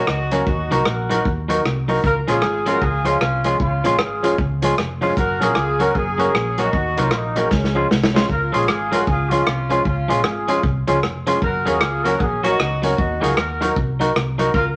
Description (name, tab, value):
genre	ska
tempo	154 BPM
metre	4/4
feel	swing 62% on 8ths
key	Db major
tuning	A4 = 439 Hz
part	mellow horn section	melody	0.0-14.7 s	Ab3 to Bb4	-25 LUFS	equal	none
part	clean electric guitar	accompaniment	0.0-14.5 s	F3 to Gb4	-26 LUFS	equal	none
part	dark upright piano	stabs	0.0-14.5 s	Db4 to Bb4	-26 LUFS	equal	none
part	hollow-body short-scale fingered electric bass	bass	0.1-14.7 s	F1 to Eb2	-27 LUFS	equal	none
part	vintage drum kit	drums	0.1-14.7 s	hi-hat, kick drum, rim click, snare drum	-25 LUFS	equal	none
room	moderate studio reverb, RT60 0.9 s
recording	none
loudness	-19 LUFS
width	mono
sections	0.0-8.3 A section; 8.3-14.8 A section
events	drum fill 7.5-8.3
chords	0.5 Ebm; 2.0 Db; 5.2 Gb; 6.7 Ebm; 7.5 Db; 11.4 Gb; 13.0 Ebm